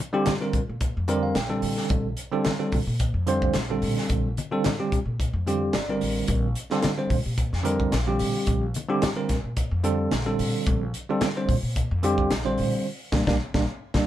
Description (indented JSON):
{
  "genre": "electric jazz fusion",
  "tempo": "110 BPM",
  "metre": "4/4",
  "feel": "swing 54% on 16ths",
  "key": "Bb major",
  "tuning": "A4 = 444 Hz",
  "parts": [
    { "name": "congas", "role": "percussion", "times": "0.0-14.1 s", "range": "none", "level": "-30 LUFS", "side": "left 3 dB", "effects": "none" },
    { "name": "bell-like tine electric piano", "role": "accompaniment", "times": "0.1-14.0 s", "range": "D3 to G5", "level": "-25 LUFS", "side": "right 2 dB", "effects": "medium stereo tremolo" },
    { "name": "crisp fusion drum kit", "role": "drums", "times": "0.3-14.1 s", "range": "hi-hat, kick drum, snare drum", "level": "-28 LUFS", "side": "equal", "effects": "none" },
    { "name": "upright bass", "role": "bass", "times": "0.5-14.1 s", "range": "G1 to Bb2", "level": "-28 LUFS", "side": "equal", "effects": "none" }
  ],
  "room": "light reverb",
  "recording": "band playing live in one room",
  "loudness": "-22 LUFS",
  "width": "side -12 dB against mid",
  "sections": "0.0-14.1 A section",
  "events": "tine electric piano fill 0.8-1.9, 5.5-6.3; band accent 12.9-14.1",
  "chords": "0.0 Bb69",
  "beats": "0.27 0.81 1.36 | 1.91 2.46 3.01 3.56 | 4.11 4.65 5.20 5.75 | 6.29 6.84 7.39 7.93 | 8.48 9.03 9.57 10.12 | 10.67 11.21 11.76 12.31 | 12.86 13.40 13.95"
}